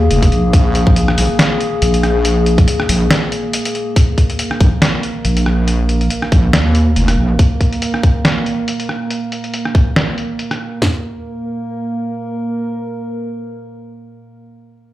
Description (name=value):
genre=deep dubstep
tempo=140 BPM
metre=4/4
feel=swing 56% on 16ths, half-time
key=unclear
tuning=A4 = 440 Hz
part: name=dark analog pad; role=sustained chords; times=0.0-14.4 s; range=Bb3 to Bb4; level=-20 LUFS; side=equal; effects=wide subtle chorus
part: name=wobble bass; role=bass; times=0.0-7.4 s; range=F1 to Eb2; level=-14 LUFS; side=equal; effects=chorus
part: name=trip hop sampler-style drum kit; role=drums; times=0.1-10.6 s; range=hi-hat, rim click, snare drum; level=-18 LUFS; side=equal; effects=low-pass filter on hats, studio reverb, low-pass filter on snare
part: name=garage drum kit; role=drums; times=0.2-10.9 s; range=kick drum, snare drum, toms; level=-11 LUFS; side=equal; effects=studio reverb
room=moderate digital room reverb, RT60 1.1 s, digital ambience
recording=played on a big sound system in a bare room, large studio reverb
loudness=-13 LUFS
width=side -15 dB against mid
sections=0.0-4.0 A section; 4.0-10.8 B section; 10.8-14.2 C section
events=drop 0.0-4.0; break 3.1-4.0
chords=0.0 Bb5; 10.8 N.C.